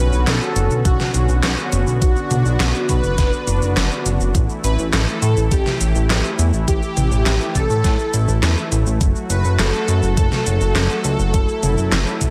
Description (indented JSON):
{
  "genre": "synthwave",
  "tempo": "103 BPM",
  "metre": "4/4",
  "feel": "straight",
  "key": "unclear",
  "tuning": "A4 = 438 Hz",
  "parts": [
    { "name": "soft supersaw", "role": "melody", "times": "0.0-12.3 s", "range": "F#4 to B4", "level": "-26 LUFS", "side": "equal", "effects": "digital delay" },
    { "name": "warm analog pad", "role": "sustained chords", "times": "0.0-12.3 s", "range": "D3 to F#4", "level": "-28 LUFS", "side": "equal", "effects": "chorus, sidechain pumping" },
    { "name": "chorused synth bass", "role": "bass", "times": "0.0-12.3 s", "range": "F#1 to A2", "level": "-20 LUFS", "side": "equal", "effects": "sidechain pumping" },
    { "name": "pop drum kit", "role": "drums", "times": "0.1-12.3 s", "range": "handclaps, hi-hat, shaker, snare drum, toms", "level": "-24 LUFS", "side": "equal", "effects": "overdrive, gated reverb" },
    { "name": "electronic kick drum", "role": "drums", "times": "0.9-12.3 s", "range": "none", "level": "-21 LUFS", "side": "equal", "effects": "overdrive" }
  ],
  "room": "digital ambience",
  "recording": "none",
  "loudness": "-18 LUFS",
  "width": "mono",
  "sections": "0.0-12.3 A section",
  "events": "none",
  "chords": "0.0 Bmadd9; 4.3 A5; 9.0 F#m",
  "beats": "0.27 0.85 1.44 | 2.02 2.60 3.18 3.77 | 4.35 4.93 5.51 6.09 | 6.68 7.26 7.84 8.43 | 9.01 9.59 10.17 10.76 | 11.34 11.92"
}